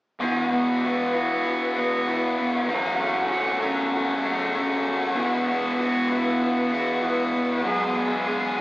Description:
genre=rock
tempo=97 BPM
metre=4/4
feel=straight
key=unclear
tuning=A4 = 440 Hz
part: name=soft string machine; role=sustained chords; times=0.2-8.6 s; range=G#4 to E6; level=-31 LUFS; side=equal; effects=phaser, ensemble chorus
part: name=mellow electric guitar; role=arpeggios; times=0.2-8.6 s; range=E3 to G#4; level=-30 LUFS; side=left 1 dB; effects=none
part: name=biting overdriven guitar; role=riff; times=0.2-8.6 s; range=E2 to G#4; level=-24 LUFS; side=left 1 dB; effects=none
part: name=raw garage guitar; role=riff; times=0.2-8.6 s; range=E2 to G#4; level=-27 LUFS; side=right 1 dB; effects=overdrive
room=wet studio reverb, RT60 0.5 s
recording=rough rehearsal-room recording, small speaker sound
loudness=-21 LUFS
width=side -19 dB against mid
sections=0.2-8.6 A section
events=none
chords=0.2 Bsus4; 2.7 F#m7; 5.2 Bsus4; 7.6 Eadd9

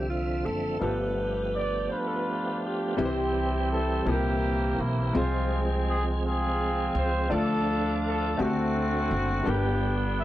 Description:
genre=slow gospel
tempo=56 BPM (dotted quarters)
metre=6/8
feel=straight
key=C major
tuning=A4 = 439 Hz
part: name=breathy alto saxophone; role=melody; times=0.0-2.3 s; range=F4 to C5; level=-31 LUFS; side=equal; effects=none
part: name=clear grand piano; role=accompaniment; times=0.0-10.2 s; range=G2 to E5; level=-33 LUFS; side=left 3 dB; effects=none
part: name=tonewheel organ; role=sustained chords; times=0.0-10.2 s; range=D3 to E5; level=-32 LUFS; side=right 2 dB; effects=slow rotary speaker, overdrive, chorus vibrato
part: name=upright bass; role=bass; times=0.0-10.2 s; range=F#1 to D2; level=-29 LUFS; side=equal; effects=none
part: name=warm horn section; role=melody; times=1.6-10.2 s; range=Ab3 to E5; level=-29 LUFS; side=equal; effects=none
room=light reverb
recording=dry, close 1970s-style studio recording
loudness=-25 LUFS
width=side -14 dB against mid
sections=0.0-3.0 A section; 3.0-10.2 B section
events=none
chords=0.0 Dm9; 0.8 G9; 3.0 C; 4.1 C7; 5.2 Fm/C; 7.3 Dm; 8.4 D7; 9.5 G

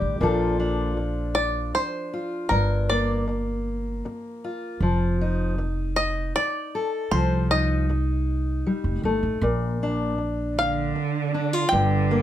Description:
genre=acoustic folk duo or small band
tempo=78 BPM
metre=3/4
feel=straight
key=unclear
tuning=A4 = 440 Hz
part: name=fingerpicked steel-string acoustic guitar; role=accompaniment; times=0.0-12.2 s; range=G2 to A4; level=-26 LUFS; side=left 2 dB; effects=none
part: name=upright bass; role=bass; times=0.0-12.2 s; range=F1 to C2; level=-26 LUFS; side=right 1 dB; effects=none
part: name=bluegrass banjo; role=melody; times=1.3-12.2 s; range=Bb4 to G5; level=-25 LUFS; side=equal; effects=none
part: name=warm cello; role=second line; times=10.6-12.2 s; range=D3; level=-26 LUFS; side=right 8 dB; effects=none
room=moderate studio reverb, RT60 0.6 s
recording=none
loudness=-22 LUFS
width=side -12 dB against mid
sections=0.2-12.2 A section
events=none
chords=0.2 Bbmaj7; 2.5 Gm7; 4.8 F7; 9.4 Bb

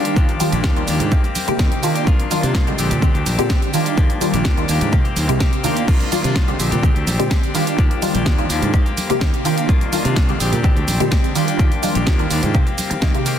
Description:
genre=filtered disco house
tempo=126 BPM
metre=4/4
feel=straight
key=Eb major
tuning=A4 = 440 Hz
part: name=funky polysynth comp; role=accompaniment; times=0.0-13.4 s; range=C3 to G4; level=-21 LUFS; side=right 1 dB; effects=chorus, phaser, sidechain pumping, low-pass filter
part: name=direct-recorded clean electric guitar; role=riff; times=0.0-13.4 s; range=Eb3 to G4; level=-25 LUFS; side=left 6 dB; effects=vintage 12-bit sampler grit, sidechain pumping, low-pass filter
part: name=house drum kit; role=drums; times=0.1-13.4 s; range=crash cymbal, hi-hat, shaker, snare drum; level=-25 LUFS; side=right 2 dB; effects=sidechain pumping on hats, sidechain pumping on perc, sidechain pumping on cymbals
part: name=tambourine and congas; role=percussion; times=0.1-13.4 s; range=none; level=-30 LUFS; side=right 2 dB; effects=none
part: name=fuzz fingered electric bass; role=bass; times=0.2-13.1 s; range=Bb1 to C3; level=-23 LUFS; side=equal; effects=overdrive, sidechain pumping, low-pass filter
part: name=electronic kick drum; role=drums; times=0.2-13.1 s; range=none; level=-17 LUFS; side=equal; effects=none
room=light reverb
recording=dense, heavily limited modern master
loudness=-15 LUFS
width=side -9 dB against mid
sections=0.0-13.4 A section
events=none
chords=0.0 Ebmaj9; 1.1 Abmaj9; 2.1 Cm11; 2.8 Bb13; 3.7 Ebmaj9; 4.9 Cm11; 6.6 Bb13; 7.5 Ebmaj9; 8.7 Abmaj9; 9.7 Cm11; 10.4 Bb13; 11.4 Ebmaj9; 12.5 Abmaj9

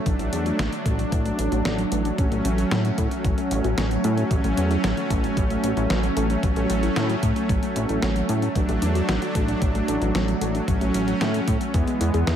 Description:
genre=synthwave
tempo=113 BPM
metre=4/4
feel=straight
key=A major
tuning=A4 = 441 Hz
part: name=soft supersaw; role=sustained chords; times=0.0-12.4 s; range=E3 to D4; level=-24 LUFS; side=right 1 dB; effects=sidechain pumping
part: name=warbly dusty pluck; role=arpeggios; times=0.0-12.4 s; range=F#3 to G#4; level=-30 LUFS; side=left 2 dB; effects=chorus, vintage 12-bit sampler grit, analog delay
part: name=chorused synth bass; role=bass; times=0.1-12.4 s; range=A1 to A2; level=-25 LUFS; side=equal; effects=none
part: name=detuned 8-bit digital drum machine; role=drums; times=0.1-12.4 s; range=hi-hat, snare drum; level=-31 LUFS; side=equal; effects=overdrive
part: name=electronic kick drum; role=drums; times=0.1-11.8 s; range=none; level=-25 LUFS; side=equal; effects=overdrive
room=moderate plate reverb, RT60 2.2 s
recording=dreamy mix soaked in reverb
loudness=-20 LUFS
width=side -9 dB against mid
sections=0.0-12.4 A section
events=none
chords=0.1 D/A; 2.2 F#m/A; 4.3 A6; 8.6 D/A; 10.7 F#m/A; 11.7 E

